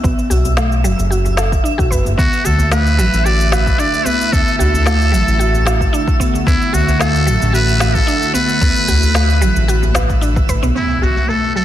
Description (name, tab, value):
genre	organic downtempo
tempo	112 BPM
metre	4/4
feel	straight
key	unclear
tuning	A4 = 443 Hz
part	mallet-like synth pluck	arpeggios	0.0-11.6 s	F#3 to B4	-21 LUFS	equal	chorus, ping-pong delay, shimmer reverb
part	smooth synth bass	bass	0.0-10.7 s	F#1 to D2	-15 LUFS	equal	sidechain pumping
part	electronic cabasa and snare drum	drums	0.0-11.6 s	none	-23 LUFS	equal	overdrive, low-pass filter on perc, low-pass filter on snare, low-pass filter on room
part	electronic kick drum	drums	0.0-10.6 s	none	-16 LUFS	equal	overdrive
part	twinkling granular texture	texture	0.0-11.6 s	E5 to F#5	-26 LUFS	right 4 dB	built-in reverb, shimmer reverb
part	djembe	percussion	0.3-11.3 s	none	-23 LUFS	equal	none
part	trumpet with metal mute	melody	2.2-11.6 s	E4 to D5	-18 LUFS	equal	ping-pong delay, shimmer reverb
part	warbly tape-like pad	sustained chords	3.1-11.6 s	B2 to F#4	-24 LUFS	equal	chorus, built-in reverb, sidechain pumping, shimmer reverb
part	impact	sound effects	10.8-11.6 s	none	-21 LUFS	equal	none
room	light reverb, digital ambience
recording	dense, heavily limited modern master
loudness	-12 LUFS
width	side -12 dB against mid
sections	0.0-10.8 A section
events	filter sweep on synth pluck 0.0-10.8; impact 10.8-11.6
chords	0.0 B5; 2.2 D6; 10.8 Bm